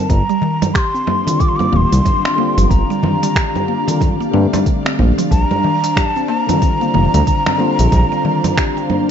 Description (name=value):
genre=organic downtempo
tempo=92 BPM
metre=4/4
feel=swing 60% on 16ths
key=G minor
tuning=A4 = 440 Hz
part: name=breathy hollow bansuri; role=melody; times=0.0-9.1 s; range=A5 to D6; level=-19 LUFS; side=right 1 dB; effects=ping-pong delay
part: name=bright tine electric piano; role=accompaniment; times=0.0-9.1 s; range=D3 to F4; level=-22 LUFS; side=left 3 dB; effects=lush chorus, sidechain pumping, ping-pong delay
part: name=mallet-like synth pluck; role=arpeggios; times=0.0-9.1 s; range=D3 to G4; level=-22 LUFS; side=equal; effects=chorus, phaser
part: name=ethereal airy pad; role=sustained chords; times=0.9-9.1 s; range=D4 to F5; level=-23 LUFS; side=left 3 dB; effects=ensemble chorus, built-in reverb, sidechain pumping
part: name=smooth synth bass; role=bass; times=0.1-8.1 s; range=D1 to G2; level=-14 LUFS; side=equal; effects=none
part: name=electronic kick drum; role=drums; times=0.1-8.7 s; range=none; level=-17 LUFS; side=equal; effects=studio reverb
part: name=organic electronic drum kit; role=drums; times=0.1-9.1 s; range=congas, finger snaps, hi-hat, shaker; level=-21 LUFS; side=right 4 dB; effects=studio reverb
part: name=darbuka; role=percussion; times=0.4-8.5 s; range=none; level=-24 LUFS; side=left 2 dB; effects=none
room=moderate concert hall reverb, RT60 1.8 s, digital ambience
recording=dark, warm production, nothing above 7.7 kHz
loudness=-13 LUFS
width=side -8 dB against mid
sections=0.0-9.1 A section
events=none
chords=0.1 Gm7; 5.3 Bbadd9